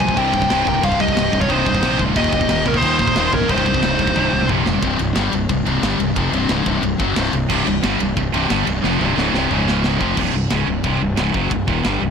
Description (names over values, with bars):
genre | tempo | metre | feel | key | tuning
heavy metal | 180 BPM | 4/4 | straight | C phrygian | A4 = 440 Hz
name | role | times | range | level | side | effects
high-gain lead guitar | melody | 0.0-4.5 s | Bb4 to Ab5 | -20 LUFS | left 1 dB | distortion
nasal lead guitar with a parked wah | second line | 0.0-4.5 s | Db4 to C5 | -28 LUFS | right 7 dB | overdrive
scooped high-gain guitar | riff | 0.0-10.2 s | C2 to G3 | -22 LUFS | right 1 dB | distortion
sludgy distorted guitar | riff | 0.0-12.1 s | C2 to G3 | -22 LUFS | left 9 dB | overdrive
tight distorted guitar | riff | 0.0-4.8, 7.5-12.1 s | C2 to G3 | -23 LUFS | right 16 dB | distortion
fuzz fingered electric bass | bass | 0.0-12.1 s | C1 to Eb2 | -24 LUFS | right 1 dB | overdrive
tight metal drum kit | drums | 0.0-11.9 s | crash cymbal, kick drum, ride cymbal, snare drum, toms | -24 LUFS | equal | soft clipping on kick
room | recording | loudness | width
small room ambience | blown-out, overdriven recording, overdrive | -15 LUFS | side -6 dB against mid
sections
0.0-4.8 A section; 4.8-10.2 B section; 10.2-12.1 C section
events
drum fill 4.2-4.8, 8.8-10.2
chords
0.0 Cm; 2.2 Eb; 3.5 Cm; 4.8 C5; 9.5 Db5; 10.0 F5; 10.2 Cm